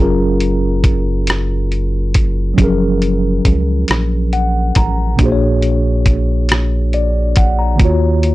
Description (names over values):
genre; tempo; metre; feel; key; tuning
slow six-eight R&B; 46 BPM (dotted quarters); 6/8; straight; F# major; A4 = 441 Hz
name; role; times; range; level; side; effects
mellow tine electric piano; accompaniment; 0.0-8.3 s; A#2 to A#5; -17 LUFS; equal; medium stereo tremolo
rubbery square bass; bass; 0.0-8.3 s; F#1 to D#2; -16 LUFS; equal; none
dusty soul sampler-style drum kit; drums; 0.4-8.3 s; hi-hat, kick drum, rim click; -14 LUFS; equal; vintage 12-bit sampler grit
room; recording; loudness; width
little or no reverb; dry, gritty hardware recording; -12 LUFS; side -17 dB against mid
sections
0.0-8.3 A section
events
tine electric piano fill 3.9-5.2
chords
0.0 F#maj9; 5.2 A#7alt; 7.8 D#m9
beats
1.27 | 2.58 3.88 | 5.18 6.49 | 7.79